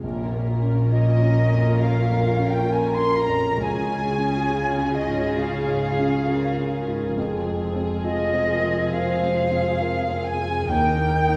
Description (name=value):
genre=cinematic, emotional film score for orchestra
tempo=68 BPM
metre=4/4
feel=rubato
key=unclear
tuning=A4 = 440 Hz
part: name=warm studio violin section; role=melody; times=0.0-11.4 s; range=Ab4 to Bb4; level=-38 LUFS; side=equal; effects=none
part: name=warm concert grand piano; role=accompaniment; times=0.0-11.4 s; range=Bb1 to F4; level=-30 LUFS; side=equal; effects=none
part: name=warm studio viola section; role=accompaniment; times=0.0-11.4 s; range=C4 to Bb4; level=-35 LUFS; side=equal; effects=none
part: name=dark studio double bass section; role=bass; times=0.0-11.4 s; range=F1 to Eb2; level=-28 LUFS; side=equal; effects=none
part: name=warm studio cello section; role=bass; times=0.0-11.4 s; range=Eb2 to Db3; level=-30 LUFS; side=equal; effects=none
part: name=mellow silver concert flute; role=second line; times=0.9-11.4 s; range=Eb5 to C6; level=-28 LUFS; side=equal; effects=none
part: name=warm studio violin section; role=second line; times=0.9-11.4 s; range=Eb5 to C6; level=-35 LUFS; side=equal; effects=none
part: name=mellow French horn section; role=sustained chords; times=1.8-11.4 s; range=F4 to C5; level=-30 LUFS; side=equal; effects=none
room=wet recital hall reverb, RT60 1.7 s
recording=heard from further back in the room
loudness=-22 LUFS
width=mono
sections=0.0-11.4 A section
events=none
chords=0.0 Bbm; 3.6 Db; 7.2 Fm; 10.7 Eb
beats=| 0.03 0.93 1.82 2.71 | 3.61 4.50 5.39 6.28 | 7.17 8.05 8.92 9.81 | 10.69